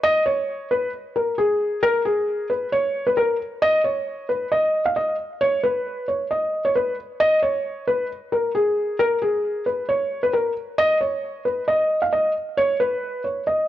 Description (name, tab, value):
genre	hip hop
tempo	134 BPM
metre	4/4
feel	half-time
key	unclear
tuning	A4 = 441 Hz
part	felt-muted upright piano	solo	0.0-13.7 s	Ab4 to F5	-19 LUFS	equal	low-pass filter
room	light reverb, small room ambience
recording	dry, gritty hardware recording, transformer saturation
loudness	-20 LUFS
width	side -12 dB against mid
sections	0.0-9.0 A section; 9.0-13.7 B section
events	none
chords	none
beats	| 0.04 0.48 0.93 1.38 | 1.83 2.27 2.72 3.17 | 3.62 4.07 4.51 4.96 | 5.41 5.86 6.30 6.75 | 7.20 7.65 8.10 8.54 | 8.99 9.44 9.89 10.34 | 10.78 11.23 11.68 12.13 | 12.57 13.02 13.47